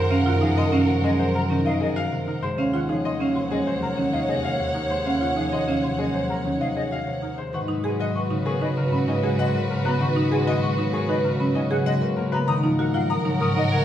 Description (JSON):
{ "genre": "classical, minimalist pattern music", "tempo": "97 BPM", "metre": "4/4", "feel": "straight", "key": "Eb dorian, G# dorian from 7.5 s", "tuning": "A4 = 439 Hz", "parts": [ { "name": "clear baby grand piano", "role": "melody", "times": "0.0-13.8 s", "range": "Ab4 to A#5", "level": "-31 LUFS", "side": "left 4 dB", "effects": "none" }, { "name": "clear French horn", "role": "second line", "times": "0.0-13.8 s", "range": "Bb4 to Db5", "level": "-31 LUFS", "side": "right 2 dB", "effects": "none" }, { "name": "concert harp", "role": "accompaniment", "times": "0.0-13.8 s", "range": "C3 to C#4", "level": "-25 LUFS", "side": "left 2 dB", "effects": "none" }, { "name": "rich chamber string section", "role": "sustained chords", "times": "0.0-13.8 s", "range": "F#4 to Gb5", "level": "-30 LUFS", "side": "equal", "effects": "none" }, { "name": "rich chamber double bass section", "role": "bass", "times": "0.0-13.8 s", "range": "Eb2 to G#2", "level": "-29 LUFS", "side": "right 1 dB", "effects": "none" }, { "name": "buzzing marimba with medium mallets", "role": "arpeggios", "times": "0.1-13.8 s", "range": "Db4 to A#4", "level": "-28 LUFS", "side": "right 3 dB", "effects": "none" }, { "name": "concert flute", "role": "arpeggios", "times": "0.3-13.6 s", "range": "Eb5 to D#6", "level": "-33 LUFS", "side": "left 2 dB", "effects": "none" } ], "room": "wet large studio reverb, RT60 1.3 s", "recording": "heard from further back in the room", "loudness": "-21 LUFS", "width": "side -11 dB against mid", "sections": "0.0-7.5 A section; 7.5-13.8 B section", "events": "none", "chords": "0.0 Gbmaj13; 2.6 Ebm11; 7.5 G#m9; 12.5 F#6/G#", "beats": "| 0.11 0.73 1.34 1.96 | 2.58 3.20 3.82 4.44 | 5.06 5.67 6.29 6.91 | 7.53 8.15 8.77 9.39 | 10.00 10.62 11.24 11.86 | 12.48 13.10 13.72" }